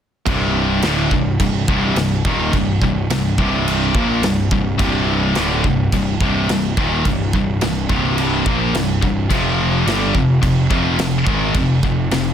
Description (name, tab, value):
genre	heavy metal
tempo	106 BPM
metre	4/4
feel	straight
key	C minor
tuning	A4 = 439 Hz
part	heavy high-gain guitar	riff	0.3-12.3 s	C2 to Bb3	-20 LUFS	right 8 dB	distortion
part	scooped high-gain guitar	riff	0.3-12.3 s	C2 to Bb3	-19 LUFS	left 8 dB	distortion
part	fuzz picked electric bass	bass	0.3-12.3 s	C1 to Bb1	-23 LUFS	equal	overdrive
part	big rock drum kit	drums	0.3-12.3 s	crash cymbal, kick drum, snare drum	-22 LUFS	equal	none
room	light reverb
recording	dense, heavily limited modern master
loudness	-15 LUFS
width	side -9 dB against mid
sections	0.3-12.3 A section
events	none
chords	0.3 Cm; 9.3 F5